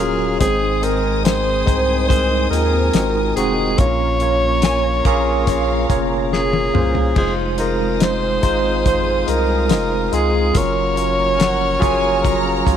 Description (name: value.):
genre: pop ballad.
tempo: 71 BPM.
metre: 4/4.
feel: straight.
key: Bb minor.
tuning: A4 = 439 Hz.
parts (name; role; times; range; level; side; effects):
bright alto saxophone; melody; 0.0-12.8 s; Ab4 to Db5; -20 LUFS; left 1 dB; none.
tine electric piano; accompaniment; 0.0-12.8 s; Ab2 to Eb5; -20 LUFS; right 1 dB; medium stereo tremolo.
warm studio string section; sustained chords; 0.0-12.8 s; Ab4 to F6; -29 LUFS; left 2 dB; none.
fingerpicked steel-string acoustic guitar; arpeggios; 0.0-12.8 s; F2 to Ab4; -28 LUFS; right 12 dB; none.
saturated sub bass; bass; 0.0-12.8 s; Eb1 to Eb2; -22 LUFS; equal; none.
damped 70s drum kit; drums; 0.4-12.8 s; crash cymbal, hi-hat, kick drum, snare drum, toms; -18 LUFS; left 2 dB; none.
rich studio violin section; second line; 4.6-6.1, 11.3-12.8 s; F5 to Bb5; -27 LUFS; right 1 dB; none.
room: light reverb, small room reverb.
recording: 1960s-style stereo.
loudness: -15 LUFS.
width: side -9 dB against mid.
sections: 0.0-12.8 A section.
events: drum fill 6.3-7.2.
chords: 0.4 Ab; 3.8 Bbm; 10.6 Gbmaj7.